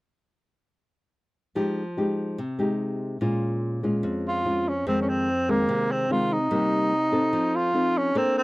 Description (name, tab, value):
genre	bossa nova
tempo	146 BPM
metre	4/4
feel	straight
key	F minor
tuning	A4 = 440 Hz
part	nylon-string guitar	accompaniment	1.6-8.4 s	F2 to C5	-25 LUFS	left 1 dB	none
part	breathy tenor saxophone	melody	4.3-8.4 s	Bb3 to F4	-23 LUFS	right 1 dB	none
room	little or no reverb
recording	dry, close 1970s-style studio recording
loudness	-22 LUFS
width	side -20 dB against mid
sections	1.6-4.9 A section; 4.9-8.4 B section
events	none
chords	1.6 Fm9; 3.2 Bbm7; 4.9 Fm7; 6.5 Cm7; 7.3 F7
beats	| 1.57 1.98 2.39 2.80 | 3.21 3.63 4.04 4.45 | 4.86 5.27 5.68 6.10 | 6.51 6.92 7.33 7.74 | 8.16